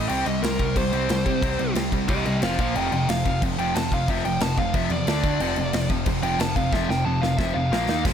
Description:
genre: punk rock.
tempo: 181 BPM.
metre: 4/4.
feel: straight.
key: unclear.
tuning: A4 = 440 Hz.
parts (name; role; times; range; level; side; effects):
biting lead guitar; melody; 0.0-8.0 s; G4 to A5; -27 LUFS; equal; overdrive.
distorted electric guitar; riff; 0.0-8.1 s; F2 to Eb4; -32 LUFS; equal; overdrive.
sludgy distorted guitar; riff; 0.0-8.1 s; F2 to Eb4; -28 LUFS; right 10 dB; overdrive.
tight distorted guitar; riff; 0.0-8.1 s; F2 to Eb4; -28 LUFS; left 13 dB; distortion.
growling picked electric bass; bass; 0.0-8.1 s; F1 to C3; -29 LUFS; equal; overdrive.
big rock drum kit; drums; 0.1-8.1 s; crash cymbal, kick drum, snare drum; -27 LUFS; equal; none.
room: light reverb.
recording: none.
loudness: -21 LUFS.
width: side -8 dB against mid.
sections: 0.0-8.0 A section.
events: lead electric guitar solo 0.0-8.0; drum fill 6.7-8.0.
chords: 0.1 C5; 2.4 F5; 2.6 Bb5; 2.8 F5; 5.1 D5; 5.4 F5; 7.7 Bb5; 7.9 Eb5.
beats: | 0.10 0.43 0.76 1.09 | 1.42 1.76 2.09 2.42 | 2.75 3.08 3.42 3.75 | 4.08 4.41 4.74 5.07 | 5.40 5.74 6.07 6.40 | 6.73 7.06 7.39 7.72 | 8.05.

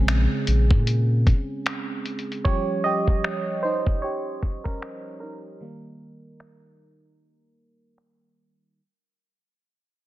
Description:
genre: contemporary R&B.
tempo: 76 BPM.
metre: 4/4.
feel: swing 58% on 16ths.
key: unclear.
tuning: A4 = 437 Hz.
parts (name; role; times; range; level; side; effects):
FM electric piano; accompaniment; 0.0-8.8 s; Db3 to Eb5; -27 LUFS; right 2 dB; chorus.
warm sub bass; bass; 0.0-1.3 s; Bb1 to Bb2; -20 LUFS; equal; none.
dusty soul sampler-style drum kit; drums; 0.1-8.2 s; finger snaps, hi-hat, kick drum; -23 LUFS; equal; soft clipping on snare.
room: digital ambience.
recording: dense, heavily limited modern master, low-pass filter.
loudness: -21 LUFS.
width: side -16 dB against mid.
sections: 0.0-8.8 A section.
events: fade-out 0.0-8.8; FM electric piano solo 0.0-8.8; break 5.6-8.8.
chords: 0.0 Bbm7; 2.4 Eb7; 5.6 Eb.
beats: 0.08 0.87 1.66 | 2.45 3.24 4.03 4.82 | 5.61 6.40 7.19 7.97.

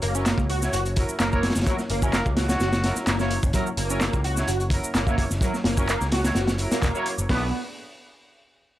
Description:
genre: breakbeat, breaks.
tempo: 128 BPM.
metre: 4/4.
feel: straight.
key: unclear.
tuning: A4 = 440 Hz.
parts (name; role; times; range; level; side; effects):
dark analog pad; sustained chords; 0.0-7.5 s; A#3 to D5; -36 LUFS; left 1 dB; chorus, sidechain pumping.
overdriven synth lead; riff; 0.0-7.5 s; F#3 to F#4; -29 LUFS; right 1 dB; distortion, ensemble chorus, analog delay.
modern bright picked electric bass; bass; 0.0-7.5 s; E1 to C#2; -27 LUFS; equal; none.
crunchy breakbeat drum kit; drums; 0.0-7.4 s; hi-hat, kick drum, snare drum; -25 LUFS; equal; none.
punchy analog drum machine; drums; 0.0-7.3 s; handclaps, hi-hat, shaker; -31 LUFS; equal; none.
mellow horn section; stabs; 0.2-7.5 s; F#3 to C#5; -32 LUFS; right 2 dB; vintage 12-bit sampler grit, analog delay.
trumpet with straight mute; melody; 1.2-3.0 s; F#4 to A#4; -31 LUFS; left 1 dB; old record sound, analog delay.
room: light reverb.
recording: dry, gritty hardware recording.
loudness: -21 LUFS.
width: side -14 dB against mid.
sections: 0.0-7.3 A section; 7.3-8.8 B section.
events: drop 0.0-7.3.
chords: 0.0 F#7; 7.3 Bm7.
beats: 0.26 0.73 1.20 | 1.67 2.14 2.61 3.08 | 3.54 4.01 4.48 4.95 | 5.42 5.89 6.36 6.83 | 7.29.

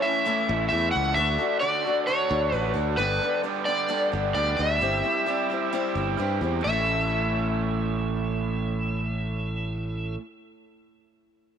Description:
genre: folk rock and heartland rock.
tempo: 131 BPM.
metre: 4/4.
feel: straight.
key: A mixolydian.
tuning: A4 = 443 Hz.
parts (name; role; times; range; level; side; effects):
overdriven slide guitar; melody; 0.0-10.1 s; B4 to F#5; -26 LUFS; equal; none.
picked acoustic archtop guitar; accompaniment; 0.0-10.3 s; A2 to A4; -31 LUFS; left 9 dB; none.
raw garage guitar; riff; 0.0-10.2 s; G2 to A4; -31 LUFS; right 12 dB; overdrive.
modern bright fingered electric bass; bass; 0.5-10.2 s; G1 to G2; -28 LUFS; equal; none.
room: moderate plate reverb, RT60 3.7 s.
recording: 1960s-style stereo with parts hard left and right.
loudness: -23 LUFS.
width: side -8 dB against mid.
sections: 0.0-6.6 A section; 6.6-10.3 B section.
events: none.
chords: 0.0 A; 1.2 D; 3.0 Gadd9; 4.8 C/G; 6.6 A.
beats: 0.26 0.71 | 1.17 1.62 2.08 2.53 | 2.99 3.44 3.90 4.36 | 4.82 5.27 5.73 6.19 | 6.65 7.10 7.56 8.02 | 8.48 8.94 9.39 9.85.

